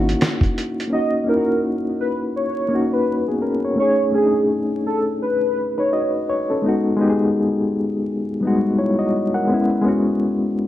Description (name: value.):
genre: lo-fi hip hop.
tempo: 84 BPM.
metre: 4/4.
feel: swing 60% on 16ths.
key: B major.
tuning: A4 = 439 Hz.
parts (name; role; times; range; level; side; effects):
mellow reed electric piano; accompaniment; 0.0-10.7 s; G3 to F#5; -19 LUFS; left 1 dB; fast tremolo, cassette tape.
dusty soul sampler-style drum kit; drums; 0.1-0.9 s; hi-hat, kick drum, snare drum; -20 LUFS; equal; none.
warm velvety synth lead; melody; 0.9-6.1 s; G#4 to D#5; -21 LUFS; equal; chorus, analog delay.
room: light reverb.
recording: vinyl crackle.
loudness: -17 LUFS.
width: side -13 dB against mid.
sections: 0.9-10.7 A section.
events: none.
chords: 0.0 Bmaj9 (rootless); 0.9 Bmaj13/A#; 3.8 Amaj9#11; 6.6 B69; 9.5 G#m11.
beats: 0.21 | 0.92 1.64 2.35 3.06 | 3.78 4.49 5.21 5.92 | 6.63 7.35 8.06 8.78 | 9.49 10.21.